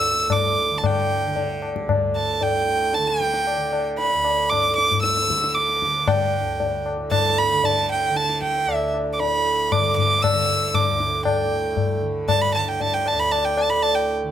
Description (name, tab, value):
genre	indian classical, Hindustani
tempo	115 BPM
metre	5/4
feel	straight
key	D raga durga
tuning	A4 = 440 Hz
part	rich violin	melody	0.0-14.1 s	G5 to E6	-21 LUFS	right 2 dB	none
part	tanpura	drone	0.0-14.3 s	D2 to D3	-28 LUFS	right 3 dB	none
part	tabla	percussion	0.3-14.0 s	none	-23 LUFS	left 4 dB	none
room	light reverb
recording	close, detailed microphones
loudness	-18 LUFS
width	side -10 dB against mid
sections	0.0-14.3 A section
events	speeding up 0.0-14.3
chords	none